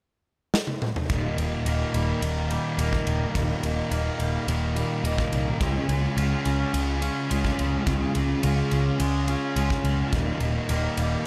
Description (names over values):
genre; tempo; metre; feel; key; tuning
rock, shoegaze and dream pop; 106 BPM; 4/4; straight; Eb mixolydian; A4 = 439 Hz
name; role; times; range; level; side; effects
big rock drum kit; drums; 0.5-11.1 s; kick drum, ride cymbal, snare drum, toms; -33 LUFS; equal; none
twangy electric guitar; arpeggios; 1.1-11.3 s; Eb2 to F4; -36 LUFS; equal; subtle chorus, slapback echo
raw garage guitar; riff; 1.1-11.3 s; Eb2 to Ab4; -33 LUFS; equal; overdrive, reverse reverb
thick fuzz guitar; riff; 1.1-11.3 s; Eb2 to Db4; -31 LUFS; equal; distortion, analog chorus
vintage muted picked electric bass; bass; 1.1-11.1 s; Eb1 to Db2; -29 LUFS; equal; none
room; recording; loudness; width
moderate plate reverb, RT60 1.7 s, small room reverb; none; -25 LUFS; mono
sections
0.0-1.1 A section; 1.1-11.3 B section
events
drum fill 0.5-1.1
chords
0.0 N.C.; 1.1 Eb; 5.6 Db; 10.1 Eb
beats
0.53 | 1.09 1.66 2.22 2.79 | 3.35 3.92 4.48 5.04 | 5.61 6.17 6.74 7.30 | 7.87 8.44 9.00 9.57 | 10.13 10.70 11.26